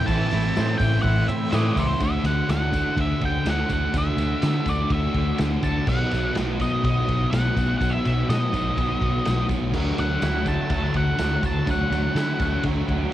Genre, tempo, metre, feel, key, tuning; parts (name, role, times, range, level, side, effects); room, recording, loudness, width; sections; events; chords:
rock, shoegaze and dream pop; 124 BPM; 4/4; straight; A4 = 440 Hz
octave-fuzz lead guitar; melody; 0.0-12.6 s; C5 to A5; -28 LUFS; equal; distortion, cassette tape, analog delay
twangy electric guitar; arpeggios; 0.0-2.0, 9.8-13.1 s; E3 to E4; -34 LUFS; right 8 dB; analog chorus, cassette tape, analog delay
raw garage guitar; riff; 0.0-13.1 s; A2 to F#4; -29 LUFS; right 8 dB; overdrive, reverse reverb, cassette tape
thick fuzz guitar; riff; 0.0-13.1 s; A2 to D4; -27 LUFS; left 6 dB; distortion, wide subtle chorus, cassette tape
vintage muted picked electric bass; bass; 0.1-13.1 s; A1 to D3; -25 LUFS; equal
raw garage drum kit; drums; 0.1-13.0 s; crash cymbal, hi-hat, kick drum, ride cymbal, snare drum; -28 LUFS; equal; cassette tape
tambourine; percussion; 0.1-12.7 s; -47 LUFS; left 4 dB
light reverb; home recording on cassette; -20 LUFS; side -13 dB against mid
0.0-2.0 A section; 2.0-13.1 B section
0.0 Am; 2.0 Dadd9; 5.9 B; 9.7 Dadd9